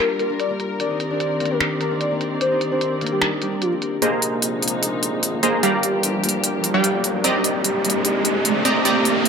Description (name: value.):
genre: future bass.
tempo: 149 BPM.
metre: 4/4.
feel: half-time.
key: C minor.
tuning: A4 = 439 Hz.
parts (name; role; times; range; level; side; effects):
soft octave-layered synth lead; melody; 0.0-3.7 s; F4 to D5; -24 LUFS; left 1 dB; chorus, phaser, tape echo.
muted studio string section; sustained chords; 0.0-9.3 s; C3 to D5; -29 LUFS; equal; low-pass filter.
concert harp; arpeggios; 0.0-9.3 s; Bb3 to Bb4; -26 LUFS; left 5 dB; low-pass filter, tape echo.
pop drum kit; drums; 0.2-9.3 s; finger snaps, hi-hat; -22 LUFS; equal; low-pass filter on hats, low-pass filter on snare.
supersaw stab; riff; 4.0-9.3 s; G3 to Bb5; -20 LUFS; right 1 dB; low-pass filter, tape echo.
fat analog bass; bass; 4.0-9.3 s; G1 to C2; -30 LUFS; equal; none.
riser; sound effects; 5.4-9.3 s; none; -24 LUFS; right 2 dB; none.
room: moderate lush hall reverb, RT60 1.7 s.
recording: high-pass filter.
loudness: -18 LUFS.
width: side -6 dB against mid.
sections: 0.0-4.0 A section; 4.0-9.3 B section.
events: build-up 4.0-9.3; filter sweep on supersaw synth 4.0-9.3; filter sweep on harp 4.0-9.3; riser 5.4-9.3.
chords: 0.0 Gm7; 0.8 Cm9; 4.0 Bb9sus4; 5.6 Gm7; 7.2 Cm9.